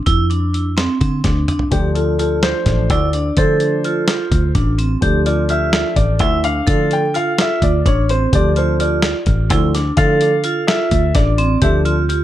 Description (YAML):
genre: progressive instrumental, band music in an uneven meter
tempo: 254 BPM (eighths)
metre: 7/8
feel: straight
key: D minor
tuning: A4 = 440 Hz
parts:
  - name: vibraphone with medium hard mallets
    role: arpeggios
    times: 0.1-12.2 s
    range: C4 to A4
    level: -19 LUFS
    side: right 4 dB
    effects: analog delay
  - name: fingered electric bass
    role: bass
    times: 0.1-12.2 s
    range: A1 to D3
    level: -18 LUFS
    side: equal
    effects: none
  - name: dusty soul sampler-style drum kit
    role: drums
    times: 0.1-12.2 s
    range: hi-hat, kick drum, snare drum, toms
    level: -19 LUFS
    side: equal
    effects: analog delay
  - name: dark grand piano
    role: accompaniment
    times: 1.7-11.9 s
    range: F3 to G5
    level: -20 LUFS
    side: left 4 dB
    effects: none
room: light reverb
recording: echo-heavy mix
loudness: -13 LUFS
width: side -13 dB against mid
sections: 0.0-1.7 A section; 1.7-12.2 B section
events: drum fill 1.2-1.7; grand piano solo 1.7-12.2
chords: 0.0 Dm